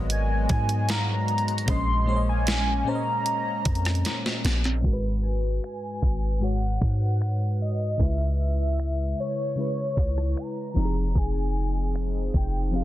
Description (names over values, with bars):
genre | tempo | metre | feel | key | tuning
contemporary R&B | 76 BPM | 4/4 | straight | Bb minor | A4 = 440 Hz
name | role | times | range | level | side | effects
FM electric piano with soft pad layer | accompaniment | 0.0-12.8 s | Ab2 to Eb5 | -31 LUFS | left 1 dB | chorus
chorused pulse-width pad | sustained chords | 0.0-4.8, 11.4-12.8 s | F3 to Ab4 | -35 LUFS | left 3 dB | none
warm 808-style bass | bass | 0.0-12.8 s | F1 to Ab2 | -25 LUFS | equal | none
warm velvety synth lead | melody | 0.1-12.8 s | Db5 to C6 | -31 LUFS | equal | chorus, digital delay
gated 80s digital drum machine | drums | 0.1-12.8 s | finger snaps, hi-hat, kick drum, rim click, snare drum | -26 LUFS | equal | gated reverb, gated reverb snare, soft clipping on snare
glassy wavetable pluck | texture | 0.5-8.3 s | F5 to Ab5 | -47 LUFS | equal | chorus, digital delay
room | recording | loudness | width
little or no reverb | dense, heavily limited modern master, low-pass filter | -23 LUFS | side -14 dB against mid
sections
0.0-4.8 A section; 4.8-12.8 B section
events
drum fill 4.0-4.8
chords
0.0 Abm11; 1.7 Bbm11; 4.8 Abm7; 8.0 Dbm7; 10.8 Fm7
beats
0.10 0.89 | 1.68 2.47 3.26 4.05 | 4.84 5.63 6.42 7.21 | 8.00 8.79 9.58 10.37 | 11.15 11.95 12.73